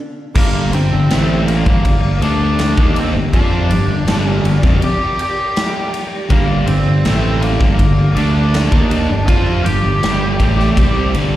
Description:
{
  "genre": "quiet-loud alternative rock",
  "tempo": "81 BPM",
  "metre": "4/4",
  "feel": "straight",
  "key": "G minor",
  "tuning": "A4 = 440 Hz",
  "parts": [
    { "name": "octave-fuzz lead guitar", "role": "melody", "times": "0.4-11.1 s", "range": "Bb3 to G5", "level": "-21 LUFS", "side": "equal", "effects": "distortion, slapback echo, analog delay" },
    { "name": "phased string machine", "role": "sustained chords", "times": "0.4-11.4 s", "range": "G4 to Bb5", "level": "-32 LUFS", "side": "right 2 dB", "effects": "none" },
    { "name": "fuzz guitar", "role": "riff", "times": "0.4-11.4 s", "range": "F2 to F4", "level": "-20 LUFS", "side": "left 5 dB", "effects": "distortion, slapback echo" },
    { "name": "overdriven semi-hollow guitar", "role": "riff", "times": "0.4-11.4 s", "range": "F2 to F4", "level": "-20 LUFS", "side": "right 6 dB", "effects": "slapback echo" },
    { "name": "overdriven fingered electric bass", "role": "bass", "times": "0.4-11.4 s", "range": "F1 to F2", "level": "-17 LUFS", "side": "equal", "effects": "none" },
    { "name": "big rock drum kit", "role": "drums", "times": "0.4-11.3 s", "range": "crash cymbal, kick drum, ride cymbal, snare drum", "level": "-17 LUFS", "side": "equal", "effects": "none" }
  ],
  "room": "small room ambience",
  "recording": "live gig heard through the venue's PA, recital hall reverb",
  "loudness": "-12 LUFS",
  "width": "side -14 dB against mid",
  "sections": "0.4-11.4 A section",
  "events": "break 0.0-0.4",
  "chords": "0.4 Gm"
}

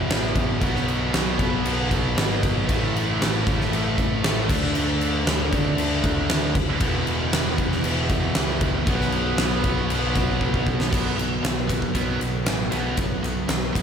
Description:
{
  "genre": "hard rock",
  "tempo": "116 BPM",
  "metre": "4/4",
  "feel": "straight",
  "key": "B minor",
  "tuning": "A4 = 438 Hz",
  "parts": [
    { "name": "biting overdriven guitar", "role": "riff", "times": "0.0-13.8 s", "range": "E2 to D4", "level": "-30 LUFS", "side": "left 1 dB", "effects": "none" },
    { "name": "crunchy overdriven guitar", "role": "riff", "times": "0.0-13.8 s", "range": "E2 to D4", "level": "-30 LUFS", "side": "left 8 dB", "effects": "none" },
    { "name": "heavy high-gain guitar", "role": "riff", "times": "0.0-13.8 s", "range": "E2 to D4", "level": "-28 LUFS", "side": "right 8 dB", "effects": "distortion, slapback echo" },
    { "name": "overdriven picked electric bass", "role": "bass", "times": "0.0-13.8 s", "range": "E1 to D2", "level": "-28 LUFS", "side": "equal", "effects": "none" },
    { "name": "huge arena drum kit", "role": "drums", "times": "0.1-13.8 s", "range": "crash cymbal, kick drum, ride cymbal, snare drum", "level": "-23 LUFS", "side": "equal", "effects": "none" }
  ],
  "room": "light reverb, small room ambience",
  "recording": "none",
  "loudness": "-20 LUFS",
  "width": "side -7 dB against mid",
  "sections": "0.0-10.9 A section; 10.9-13.8 B section",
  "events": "drum fill 10.4-10.9",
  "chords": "0.0 E5; 0.6 B5; 2.7 A5; 4.5 D5; 6.8 E5; 8.9 B5"
}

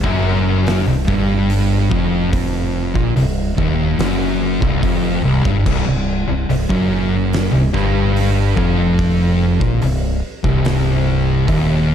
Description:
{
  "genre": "stoner and doom metal",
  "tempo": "72 BPM",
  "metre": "4/4",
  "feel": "straight",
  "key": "unclear",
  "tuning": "A4 = 440 Hz",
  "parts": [
    { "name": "thick fuzz guitar", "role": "riff", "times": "0.0-11.9 s", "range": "C2 to Bb2", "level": "-18 LUFS", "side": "left 7 dB", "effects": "distortion" },
    { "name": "thick fuzz guitar", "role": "riff", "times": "0.0-11.9 s", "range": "C2 to Bb2", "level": "-20 LUFS", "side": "right 8 dB", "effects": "distortion" },
    { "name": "growling fingered electric bass", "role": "bass", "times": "0.0-11.9 s", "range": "C1 to Bb1", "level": "-21 LUFS", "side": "right 1 dB", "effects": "overdrive" },
    { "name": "oversized low-tuned drum kit", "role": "drums", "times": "0.0-11.7 s", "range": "crash cymbal, hi-hat, kick drum, snare drum", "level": "-22 LUFS", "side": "equal", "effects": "none" }
  ],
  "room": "little or no reverb",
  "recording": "dark, warm production",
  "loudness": "-14 LUFS",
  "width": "side -9 dB against mid",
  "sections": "0.0-11.9 A section",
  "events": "none",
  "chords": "0.0 Cm"
}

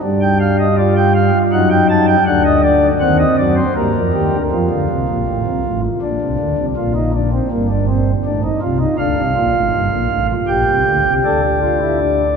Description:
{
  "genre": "classical, baroque-style 3-part fugue for pipe organ",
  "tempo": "80 BPM",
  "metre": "3/4",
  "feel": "straight",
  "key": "G minor, D minor from 9.0 s",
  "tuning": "A4 = 440 Hz",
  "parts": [
    { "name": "pipe organ, flutes", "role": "solo", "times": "0.0-12.4 s", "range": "G1 to A5", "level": "-13 LUFS", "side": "equal", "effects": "none" }
  ],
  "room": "wet cathedral reverb, RT60 5.1 s",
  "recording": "minimal, uncompressed stereo recording",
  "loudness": "-13 LUFS",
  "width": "side -6 dB against mid",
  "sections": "0.0-4.5 A section; 4.5-12.4 B section",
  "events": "none",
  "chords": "0.0 G5; 1.5 F#m6; 2.3 D7; 3.8 Gm; 4.5 F; 6.0 Bb; 6.8 Eb/Bb; 8.2 Adim; 9.0 Dm; 10.5 Bb69; 11.2 Asus4/D"
}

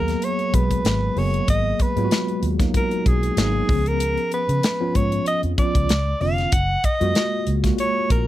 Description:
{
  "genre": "polished 1980s jazz-funk pop",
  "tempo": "95 BPM",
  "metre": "4/4",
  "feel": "swing 54% on 16ths",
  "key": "G# dorian",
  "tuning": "A4 = 440 Hz",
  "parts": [
    { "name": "breathy alto saxophone", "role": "melody", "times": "0.0-8.3 s", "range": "G#4 to F#5", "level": "-24 LUFS", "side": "right 1 dB", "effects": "slapback echo" },
    { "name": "tine electric piano", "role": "accompaniment", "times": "0.0-8.3 s", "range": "D3 to G#4", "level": "-25 LUFS", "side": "equal", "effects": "overdrive, fast stereo tremolo, wide subtle chorus" },
    { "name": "vintage muted fingered electric bass", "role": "bass", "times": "0.0-8.3 s", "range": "E#1 to C#3", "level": "-23 LUFS", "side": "equal", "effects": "none" },
    { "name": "modern studio drum kit", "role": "drums", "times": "0.1-8.3 s", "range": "hi-hat, kick drum, snare drum", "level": "-22 LUFS", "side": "equal", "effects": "none" }
  ],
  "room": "little or no reverb",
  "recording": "dry, close 1970s-style studio recording",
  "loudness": "-18 LUFS",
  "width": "side -14 dB against mid",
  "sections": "0.0-8.3 A section",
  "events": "none",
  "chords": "0.0 G#m9; 3.7 C#7; 5.9 C#7b9; 6.5 F#maj9"
}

